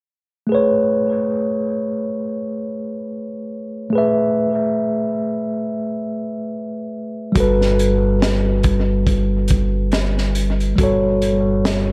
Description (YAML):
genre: R&B, neo-soul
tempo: 70 BPM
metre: 4/4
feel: swing 58% on 16ths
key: A major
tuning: A4 = 440 Hz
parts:
  - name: mellow tine electric piano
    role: accompaniment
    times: 0.5-11.9 s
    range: G3 to E5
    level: -21 LUFS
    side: equal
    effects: analog delay
  - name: upright bass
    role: bass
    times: 7.4-11.9 s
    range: G1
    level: -22 LUFS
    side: equal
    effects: none
  - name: crunchy breakbeat drum kit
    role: drums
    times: 7.4-11.9 s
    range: hi-hat, kick drum, snare drum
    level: -23 LUFS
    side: equal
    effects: analog delay
room: light reverb, studio reverb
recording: echo-heavy mix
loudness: -19 LUFS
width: mono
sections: 0.5-11.9 A section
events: none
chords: 0.5 Amaj9; 7.4 Gmaj9